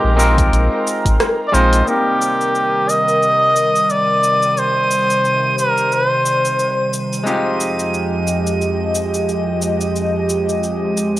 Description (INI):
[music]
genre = sunset chillout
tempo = 89 BPM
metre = 4/4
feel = swing 57% on 16ths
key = C minor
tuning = A4 = 442 Hz
[part]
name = trumpet with cup mute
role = melody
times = 0.0-6.9 s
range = G4 to Eb5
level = -16 LUFS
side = equal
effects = cassette tape, analog delay, plate reverb
[part]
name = twangy electric guitar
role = accompaniment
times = 0.0-11.2 s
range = G3 to Bb4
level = -20 LUFS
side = equal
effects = auto-pan, low-pass filter, cassette tape, tape echo, plate reverb
[part]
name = airy breathy pad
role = sustained chords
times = 0.0-11.2 s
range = F2 to C6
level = -20 LUFS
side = equal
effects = chorus, cassette tape, plate reverb
[part]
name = warm sub bass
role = bass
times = 0.0-1.8 s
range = Ab1 to Bb1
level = -15 LUFS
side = equal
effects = none
[part]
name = deep house drum kit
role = drums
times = 0.2-11.2 s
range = cabasa, hi-hat, rim click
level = -24 LUFS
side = equal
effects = overdrive
[part]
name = electronic kick drum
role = drums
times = 0.4-1.2 s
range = none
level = -18 LUFS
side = equal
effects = overdrive
[part]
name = drifting glass-harmonics texture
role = texture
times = 3.1-11.2 s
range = Eb7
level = -28 LUFS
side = right 4 dB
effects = chorus, built-in reverb, cassette tape
[sound]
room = wet studio reverb, RT60 0.5 s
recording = home recording on cassette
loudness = -14 LUFS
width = side -15 dB against mid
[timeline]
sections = 0.0-1.9 A section; 1.9-11.2 B section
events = kick drops out 1.2-1.9; band accent 1.2-1.5; filter sweep on clean electric guitar 1.9-11.2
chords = 0.0 Bb9sus4; 1.9 Cm7; 7.3 Fm7